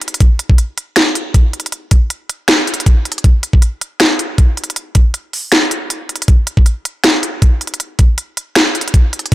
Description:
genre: hip hop.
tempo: 158 BPM.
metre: 4/4.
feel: half-time.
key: none.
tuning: none.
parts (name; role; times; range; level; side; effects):
trap drum kit; drums; 0.0-9.3 s; finger snaps, hi-hat, kick drum, snare drum; -10 LUFS; equal; soft clipping on snare.
room: light reverb.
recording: blown-out, overdriven recording, overdrive.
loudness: -11 LUFS.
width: side -16 dB against mid.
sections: 0.0-9.3 A section.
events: none.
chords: none.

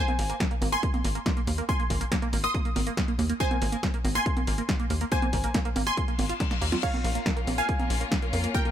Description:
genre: uplifting trance.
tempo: 140 BPM.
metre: 4/4.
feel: straight.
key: unclear.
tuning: A4 = 440 Hz.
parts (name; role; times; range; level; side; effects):
wide unison pluck; melody; 0.0-8.7 s; Bb4 to Eb6; -33 LUFS; right 2 dB; phaser, sidechain pumping, ping-pong delay.
warm concert grand piano; second line; 0.0-8.7 s; F5 to Eb6; -36 LUFS; left 4 dB; sidechain pumping, ping-pong delay.
tight sequenced synth; arpeggios; 0.0-8.7 s; Bb2 to F4; -34 LUFS; right 4 dB; chorus, phaser, cassette tape, sidechain pumping, ping-pong delay.
punchy analog drum machine; drums; 0.1-8.7 s; congas, crash cymbal, hi-hat, snare drum; -32 LUFS; equal; sidechain pumping on hats, sidechain pumping on perc, sidechain pumping on cymbals.
tight sequencer bass; bass; 0.2-8.5 s; Ab1 to F2; -29 LUFS; equal; sidechain pumping.
electronic kick drum; drums; 0.4-8.6 s; none; -28 LUFS; equal; none.
reverse cymbal; sound effects; 6.1-6.8 s; none; -38 LUFS; left 9 dB; none.
rich symphonic string section; sustained chords; 6.8-8.7 s; Bb3 to F4; -35 LUFS; left 3 dB; sidechain pumping.
room: little or no reverb.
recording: none.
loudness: -24 LUFS.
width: side -10 dB against mid.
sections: 0.0-8.7 A section.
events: reverse cymbal 6.1-6.8; drum fill 6.4-6.8.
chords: 0.0 Ab; 6.8 Bbm.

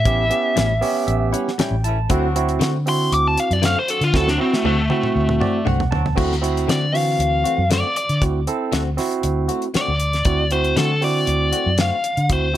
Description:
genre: straight-eighth soul blues.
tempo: 118 BPM.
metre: 4/4.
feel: straight.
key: D mixolydian.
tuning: A4 = 439 Hz.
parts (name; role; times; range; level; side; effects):
biting lead guitar; melody; 0.0-12.6 s; A3 to D6; -20 LUFS; left 1 dB; overdrive.
vintage muted fingered electric bass; bass; 0.0-12.5 s; A1 to D3; -21 LUFS; equal; none.
barky tine electric piano; accompaniment; 0.1-12.6 s; E3 to A5; -23 LUFS; right 6 dB; overdrive.
mellow horn section; sustained chords; 0.1-6.1 s; E3 to F#4; -30 LUFS; left 2 dB; none.
damped 70s drum kit; drums; 0.1-12.4 s; crash cymbal, hi-hat, kick drum, snare drum, toms; -24 LUFS; equal; none.
direct-recorded clean electric guitar; stabs; 0.6-12.0 s; A2 to F#4; -28 LUFS; left 4 dB; wide subtle chorus.
room: little or no reverb.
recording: none.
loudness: -17 LUFS.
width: side -12 dB against mid.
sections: 0.0-6.2 A section; 6.2-12.6 B section.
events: lead electric guitar solo 0.0-6.2; tine electric piano fill 0.6-2.1, 5.2-6.2; drum fill 4.1-6.2.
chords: 0.0 A7; 2.1 D7.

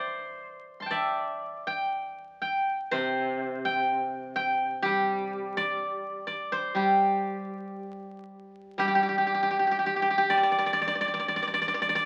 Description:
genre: chinese traditional, Chinese solo plucked strings.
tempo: 58-65 BPM.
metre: 2/4.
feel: rubato.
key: G zhi mode.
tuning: A4 = 440 Hz.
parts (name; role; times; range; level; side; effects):
steel-string zither; solo; 0.0-12.1 s; C3 to C6; -28 LUFS; equal; none.
room: wet large studio reverb, RT60 1.1 s.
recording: very old 78 rpm record, tube saturation, vinyl crackle.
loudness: -28 LUFS.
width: mono.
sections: 0.0-8.8 A section; 8.8-12.1 B section.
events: none.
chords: none.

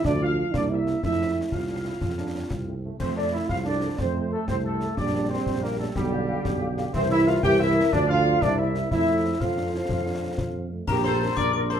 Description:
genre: military-style march for wind band.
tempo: 122 BPM (dotted quarters).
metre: 6/8.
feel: straight.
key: F major.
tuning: A4 = 440 Hz.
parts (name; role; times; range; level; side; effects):
dark trumpet section; melody; 0.0-11.8 s; G4 to G5; -32 LUFS; left 2 dB; none.
dark euphonium; second line; 0.0-11.8 s; D3 to G4; -30 LUFS; right 4 dB; none.
mellow trombone section; sustained chords; 0.0-11.8 s; F3 to G4; -28 LUFS; right 2 dB; none.
dark tuba; bass; 0.0-11.8 s; Bb1 to F2; -28 LUFS; right 2 dB; none.
concert snare drum, concert bass drum and clash cymbals; drums; 0.0-11.8 s; none; -32 LUFS; left 2 dB; none.
mellow French horn section; accompaniment; 0.2-11.8 s; F3 to F5; -32 LUFS; left 5 dB; none.
large flute ensemble; second line; 3.0-11.8 s; G4 to G5; -31 LUFS; equal; none.
glockenspiel with brass mallets; second line; 10.9-11.8 s; Bb5 to D6; -28 LUFS; left 11 dB; none.
room: moderate large studio reverb, RT60 0.9 s.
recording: dark, warm production.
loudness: -22 LUFS.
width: side -8 dB against mid.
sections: 0.0-3.0 A section; 3.0-10.9 A section.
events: none.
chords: 0.0 Dm; 0.5 C7; 1.0 F; 5.0 Gm/Bb; 6.0 G7/B; 6.9 C7; 7.9 Dm; 8.4 C7; 8.9 F; 10.9 Gm/Bb.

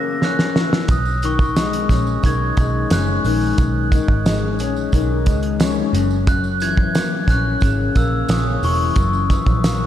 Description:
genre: indie pop, bedroom pop.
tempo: 89 BPM.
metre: 4/4.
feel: straight.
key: unclear.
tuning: A4 = 441 Hz.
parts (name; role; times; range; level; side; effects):
glockenspiel with rubber mallets; melody; 0.0-9.9 s; C#6 to A#6; -24 LUFS; equal; wide subtle chorus, analog delay.
electric guitar through a small old amp; accompaniment; 0.0-9.9 s; F#2 to C#4; -22 LUFS; left 5 dB; lush chorus, warbly pitch drift.
cloth-damped thuddy drum kit; drums; 0.2-9.8 s; hi-hat, kick drum, snare drum; -19 LUFS; right 1 dB; none.
vintage muted picked electric bass; bass; 0.9-9.9 s; E1 to C#2; -21 LUFS; right 1 dB; none.
tambourine; percussion; 0.9-9.8 s; none; -40 LUFS; right 6 dB; none.
room: moderate lush hall reverb, RT60 2.0 s.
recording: dreamy mix soaked in reverb.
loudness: -15 LUFS.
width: side -11 dB against mid.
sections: 0.0-9.9 A section.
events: drum fill 0.2-0.9.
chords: 0.0 F#7; 0.9 B69; 5.9 F#7.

